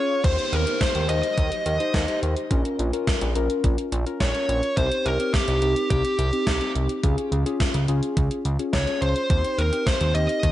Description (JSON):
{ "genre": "synth-pop", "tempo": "106 BPM", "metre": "4/4", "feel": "straight", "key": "Eb mixolydian", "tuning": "A4 = 441 Hz", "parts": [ { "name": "fuzz lead guitar", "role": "melody", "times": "0.0-10.5 s", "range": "G4 to Eb5", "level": "-25 LUFS", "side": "equal", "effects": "distortion, tape echo" }, { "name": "muted felt-like synth keys", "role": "accompaniment", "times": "0.0-10.5 s", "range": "C4 to Db5", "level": "-28 LUFS", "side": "left 3 dB", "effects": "chorus" }, { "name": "fat analog bass", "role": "bass", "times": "0.2-10.5 s", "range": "Bb1 to Eb2", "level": "-24 LUFS", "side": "equal", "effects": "none" }, { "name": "gated 80s digital drum machine", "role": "drums", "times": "0.2-10.5 s", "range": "hi-hat, kick drum, snare drum", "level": "-25 LUFS", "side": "equal", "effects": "gated reverb, gated reverb snare" }, { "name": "downlifter", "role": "sound effects", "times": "0.2-4.8 s", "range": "none", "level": "-34 LUFS", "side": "equal", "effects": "none" } ], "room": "light reverb", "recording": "nothing above 10.8 kHz", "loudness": "-20 LUFS", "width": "side -14 dB against mid", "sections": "0.2-10.5 A section", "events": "break 0.0", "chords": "0.2 Eb6; 2.5 Bbm; 4.8 Cm; 7.0 Db; 9.3 Eb6", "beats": "| 0.24 0.81 1.38 1.94 | 2.51 3.07 3.64 4.21 | 4.77 5.34 5.90 6.47 | 7.04 7.60 8.17 8.73 | 9.30 9.87 10.43" }